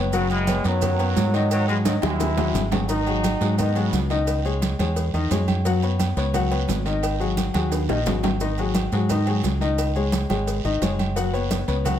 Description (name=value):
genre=latin, salsa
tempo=174 BPM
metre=4/4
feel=straight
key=G# minor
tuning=A4 = 435 Hz
part: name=clear grand piano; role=accompaniment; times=0.0-12.0 s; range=D#3 to F#5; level=-26 LUFS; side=left 5 dB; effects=none
part: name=fingered electric bass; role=bass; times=0.0-12.0 s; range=F#1 to G#2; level=-24 LUFS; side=right 1 dB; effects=none
part: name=brilliant trombone section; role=melody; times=0.1-2.7 s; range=C#3 to E4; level=-26 LUFS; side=equal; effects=plate reverb
part: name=congas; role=percussion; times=0.1-12.0 s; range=none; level=-29 LUFS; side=right 1 dB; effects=none
part: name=cowbell and bongos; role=percussion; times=0.1-12.0 s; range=none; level=-32 LUFS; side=left 4 dB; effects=none
part: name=guiro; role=percussion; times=0.1-12.0 s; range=none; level=-37 LUFS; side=right 10 dB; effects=none
part: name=maracas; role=percussion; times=0.1-12.0 s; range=none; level=-39 LUFS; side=right 11 dB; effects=none
part: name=agogo bells and timbales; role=percussion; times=0.3-12.0 s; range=none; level=-32 LUFS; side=right 8 dB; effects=none
part: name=bright trombone section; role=second line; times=2.9-4.2 s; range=B3 to D#4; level=-27 LUFS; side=right 2 dB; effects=none
room=light reverb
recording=none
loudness=-20 LUFS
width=side -10 dB against mid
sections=0.0-2.9 A section; 2.9-12.0 B section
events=drum fill 1.9-2.9, 7.7-8.4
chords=0.0 F#sus4; 1.5 G#5; 2.9 G#m7; 4.3 C#madd9; 5.7 F#sus4; 7.0 G#5; 9.8 C#sus2; 11.2 F#sus4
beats=| 0.13 0.48 0.82 1.17 | 1.51 1.86 2.20 2.55 | 2.89 3.24 3.58 3.93 | 4.27 4.62 4.96 5.31 | 5.65 6.00 6.34 6.69 | 7.03 7.38 7.72 8.06 | 8.41 8.75 9.10 9.44 | 9.79 10.13 10.47 10.82 | 11.16 11.51 11.85